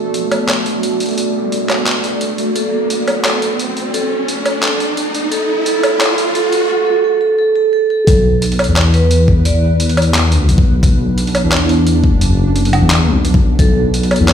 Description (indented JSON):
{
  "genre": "half-time drum and bass",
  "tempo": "174 BPM",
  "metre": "4/4",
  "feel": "swing 56% on 16ths, half-time",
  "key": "B minor",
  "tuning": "A4 = 437 Hz",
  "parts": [
    { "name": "deep dark ambient pad", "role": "sustained chords", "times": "0.0-6.7 s", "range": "B3 to D5", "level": "-22 LUFS", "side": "right 2 dB", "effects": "chorus, built-in reverb, sidechain pumping" },
    { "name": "riser", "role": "sound effects", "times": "0.0-6.7 s", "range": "none", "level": "-21 LUFS", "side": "equal", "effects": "none" },
    { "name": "pulsing gated texture", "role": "texture", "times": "0.0-14.3 s", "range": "A3 to B4", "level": "-23 LUFS", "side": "right 2 dB", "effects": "chorus, built-in reverb" },
    { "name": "boom bap sampler-style drum kit", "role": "drums", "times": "0.1-14.3 s", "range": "handclaps, hi-hat, woodblock", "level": "-18 LUFS", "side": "equal", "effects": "overdrive, high-pass filter on hats, high-pass filter on perc, high-pass filter on snare" },
    { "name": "vibraphone with medium hard mallets", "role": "melody", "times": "2.6-9.6, 13.6-13.8 s", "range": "A4 to D5", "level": "-16 LUFS", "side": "moving between left 6 dB and right 5 dB", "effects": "auto-pan, ping-pong delay" },
    { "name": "dark detuned saw bass", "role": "bass", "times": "8.1-14.3 s", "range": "F#1 to E2", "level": "-12 LUFS", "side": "left 1 dB", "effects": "tube saturation" },
    { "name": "electronic kick drum", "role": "drums", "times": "8.1-13.7 s", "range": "none", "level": "-12 LUFS", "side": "left 1 dB", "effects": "overdrive" }
  ],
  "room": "light reverb",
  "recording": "played on a big sound system in a bare room, large studio reverb, high-pass filter",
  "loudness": "-11 LUFS",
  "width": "side -8 dB against mid",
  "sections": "0.0-8.1 A section; 8.1-14.3 B section",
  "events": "build-up 0.0-8.1; riser 0.0-6.7; filter sweep 0.0-8.1; drop 8.1-14.3",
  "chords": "0.0 Bm",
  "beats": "0.14 0.49 0.83 | 1.18 1.52 1.87 2.21 | 2.56 2.90 3.25 3.59 | 3.94 4.28 4.63 4.97 | 5.32 5.66 6.00 6.35 | 6.69 7.04 7.38 7.73 | 8.07 8.42 8.76 9.11 | 9.45 9.80 10.14 10.49 | 10.83 11.18 11.52 11.87 | 12.21 12.56 12.90 13.25 | 13.59 13.94 14.28"
}